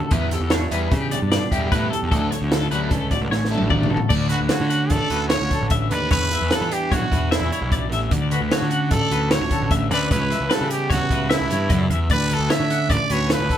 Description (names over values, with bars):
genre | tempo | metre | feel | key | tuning
math rock and midwest emo | 150 BPM | 5/4 | straight | D major | A4 = 439 Hz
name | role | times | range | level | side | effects
twelve-string electric guitar | accompaniment | 0.0-13.6 s | D2 to A4 | -26 LUFS | right 2 dB | none
clean electric guitar | arpeggios | 0.0-13.6 s | G4 to F#5 | -27 LUFS | left 6 dB | tremolo
overdriven electric guitar | riff | 0.1-4.0 s | D3 to E4 | -29 LUFS | equal | none
fuzz picked electric bass | bass | 0.1-13.5 s | A1 to E3 | -24 LUFS | equal | overdrive
compact cocktail drum kit | drums | 0.1-13.6 s | crash cymbal, hi-hat, kick drum, snare drum, toms | -23 LUFS | equal | none
growling trumpet | melody | 4.3-13.6 s | E4 to E5 | -24 LUFS | right 2 dB | none
room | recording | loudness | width
moderate studio ambience, RT60 0.5 s | band playing live in one room | -18 LUFS | side -10 dB against mid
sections
0.0-4.1 A section; 4.1-13.6 B section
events
drum fill 3.3-4.1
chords
0.1 Em7; 2.1 Dmaj7; 6.1 Em7; 10.1 C#m7b5; 12.1 Dmaj7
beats
| 0.11 0.51 0.91 1.31 1.71 | 2.11 2.51 2.91 3.31 3.72 | 4.12 4.52 4.92 5.32 5.72 | 6.12 6.52 6.92 7.32 7.71 | 8.12 8.51 8.91 9.31 9.71 | 10.11 10.51 10.91 11.30 11.70 | 12.10 12.50 12.90 13.30